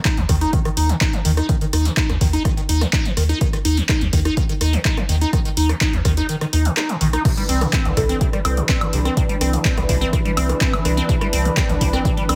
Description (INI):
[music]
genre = acid house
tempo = 125 BPM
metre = 4/4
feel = straight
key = unclear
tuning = A4 = 439 Hz
[part]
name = liquid acid bass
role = riff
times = 0.1-12.4 s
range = B2 to Eb4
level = -25 LUFS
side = equal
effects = phaser, overdrive, lush chorus
[part]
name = electronic kick drum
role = drums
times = 0.1-12.1 s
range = none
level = -23 LUFS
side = equal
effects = none
[part]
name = punchy analog drum machine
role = drums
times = 0.1-12.4 s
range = crash cymbal, handclaps, hi-hat, rim click, woodblock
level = -27 LUFS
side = equal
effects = overdrive
[part]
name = warm sub bass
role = bass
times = 0.2-12.4 s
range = Bb1 to Eb2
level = -22 LUFS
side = equal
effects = sidechain pumping
[part]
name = warm analog pad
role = sustained chords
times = 7.2-12.4 s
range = E3 to B4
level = -27 LUFS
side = equal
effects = chorus, sidechain pumping
[part]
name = mallet-like synth pluck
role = melody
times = 8.0-8.3 s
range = A4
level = -30 LUFS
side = equal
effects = chorus, phaser, delay
[sound]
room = light reverb, digital ambience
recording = heavily compressed radio sound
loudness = -19 LUFS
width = mono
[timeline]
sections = 0.0-12.4 A section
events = kick drops out 6.3-7.3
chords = 0.0 Eb5; 7.3 Cmaj9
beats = 0.05 0.53 1.01 | 1.49 1.97 2.45 2.93 | 3.41 3.89 4.37 4.85 | 5.33 5.81 6.29 6.77 | 7.25 7.73 8.21 8.69 | 9.17 9.65 10.13 10.61 | 11.09 11.57 12.05